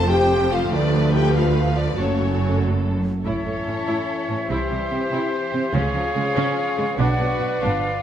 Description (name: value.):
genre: cinematic, heroic adventure film score.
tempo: 96 BPM (dotted quarters).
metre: 6/8.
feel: straight.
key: unclear.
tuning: A4 = 443 Hz.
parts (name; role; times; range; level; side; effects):
rich symphonic violin section; melody; 0.0-8.0 s; G#4 to C#5; -32 LUFS; left 4 dB; none.
warm symphonic violin section; second line; 0.0-8.0 s; E#4 to G5; -30 LUFS; left 1 dB; none.
warm symphonic viola section; accompaniment; 0.0-7.8 s; F3 to E4; -28 LUFS; equal; none.
warm French horn section; sustained chords; 0.0-8.0 s; E3 to A4; -26 LUFS; left 3 dB; none.
rich studio double bass section; bass; 0.0-7.8 s; F1 to D2; -25 LUFS; right 3 dB; none.
rich symphonic cello section; bass; 0.0-7.7 s; D2 to C#3; -24 LUFS; right 2 dB; none.
bright concert flute; second line; 3.2-8.0 s; E5 to F#5; -29 LUFS; left 1 dB; none.
clear oboe; second line; 3.3-8.0 s; C5 to D5; -28 LUFS; right 1 dB; none.
warm clarinet; second line; 3.3-8.0 s; E4 to B4; -29 LUFS; left 2 dB; none.
room: moderate scoring stage reverb, RT60 1.8 s.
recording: none.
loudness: -19 LUFS.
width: side -10 dB against mid.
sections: 0.0-3.3 A section; 3.3-8.0 B section.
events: none.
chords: 0.0 F; 0.7 Dm; 2.0 F#m; 3.3 A; 4.5 C; 5.7 C#; 7.0 Bm.